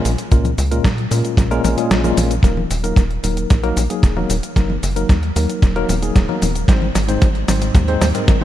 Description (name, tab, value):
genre	italo disco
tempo	113 BPM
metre	4/4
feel	straight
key	unclear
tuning	A4 = 440 Hz
part	tine electric piano	stabs	0.0-8.4 s	Ab2 to C5	-20 LUFS	left 2 dB	overdrive, fast stereo tremolo, tape echo
part	tight sequencer bass	bass	0.1-8.4 s	Eb1 to Bb2	-20 LUFS	equal	none
part	detuned 8-bit digital drum machine	drums	0.1-8.4 s	cabasa, hi-hat, snare drum, toms	-22 LUFS	equal	none
part	kick drum	drums	0.3-8.4 s	none	-13 LUFS	equal	none
room	light reverb, small room ambience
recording	dark, warm production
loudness	-14 LUFS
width	side -12 dB against mid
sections	0.0-2.4 A section; 2.4-8.4 B section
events	kick drops out 1.9-2.4; drum fill 2.4-8.4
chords	0.0 Bbm7; 2.4 Ebm; 6.7 Ab